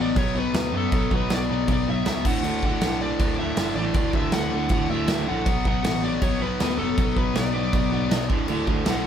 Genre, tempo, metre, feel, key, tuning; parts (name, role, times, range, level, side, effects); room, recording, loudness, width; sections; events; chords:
punk rock; 159 BPM; 4/4; straight; D major; A4 = 442 Hz
smooth overdriven lead guitar; melody; 0.0-9.1 s; A4 to F#5; -30 LUFS; left 3 dB
overdriven electric guitar; riff; 0.0-9.1 s; D2 to B3; -30 LUFS; left 5 dB
overdriven electric guitar; riff; 0.0-9.1 s; D2 to B3; -26 LUFS; right 1 dB
tine electric piano; bass; 0.0-9.1 s; F#1 to F#2; -29 LUFS; right 1 dB; fast stereo tremolo
big rock drum kit; drums; 0.2-9.0 s; crash cymbal, kick drum, snare drum; -26 LUFS; right 1 dB
light reverb; band playing live in one room; -21 LUFS; side -8 dB against mid
0.0-9.1 A section
0.0 Bm; 2.2 D